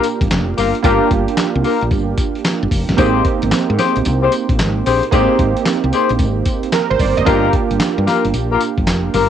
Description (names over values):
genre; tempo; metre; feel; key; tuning
R&B, new jack swing; 112 BPM; 4/4; swing 64% on 16ths; unclear; A4 = 440 Hz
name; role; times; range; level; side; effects
warm analog keys; accompaniment; 0.0-9.3 s; Bb3 to Eb5; -18 LUFS; right 9 dB; chorus, cassette tape, plate reverb
mellow horn section; stabs; 0.0-9.3 s; Bb3 to C5; -18 LUFS; left 8 dB; cassette tape, tape echo, plate reverb
dusty soul sampler-style drum kit; drums; 0.0-9.3 s; handclaps, hi-hat, kick drum, snare drum, tambourine; -19 LUFS; left 1 dB; cassette tape
woody fretless electric bass; bass; 0.2-9.3 s; F1 to Ab2; -19 LUFS; left 1 dB; none
room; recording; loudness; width
light reverb; home recording on cassette; -13 LUFS; side -9 dB against mid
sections
0.0-9.3 A section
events
none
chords
0.0 Gm7; 3.0 Abmaj7; 7.3 Gm7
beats
0.30 | 0.84 1.37 1.91 2.45 | 2.98 3.52 4.05 4.59 | 5.12 5.66 6.20 6.73 | 7.27 7.80 8.34 8.87